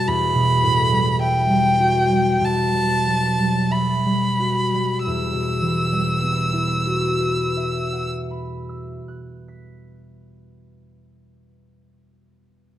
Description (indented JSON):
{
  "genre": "classical, impressionist duo for violin and harp",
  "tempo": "43-54 BPM",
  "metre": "4/4",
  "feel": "rubato",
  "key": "E minor",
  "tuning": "A4 = 440 Hz",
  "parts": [
    { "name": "rich violin", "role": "melody", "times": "0.0-8.1 s", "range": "G5 to E6", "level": "-21 LUFS", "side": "equal", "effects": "none" },
    { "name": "concert harp", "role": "accompaniment", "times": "0.0-11.9 s", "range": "E2 to B6", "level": "-21 LUFS", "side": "equal", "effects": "none" }
  ],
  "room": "moderate recital hall reverb, RT60 1.7 s",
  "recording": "dark, warm production",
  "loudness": "-18 LUFS",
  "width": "side -12 dB against mid",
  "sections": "0.0-5.1 A section; 5.1-10.5 B section",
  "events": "slowing down 0.0-5.1",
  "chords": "0.0 Emadd9",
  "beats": "| 0.07 1.21 2.42 3.71 | 5.07 6.40 7.75 9.11"
}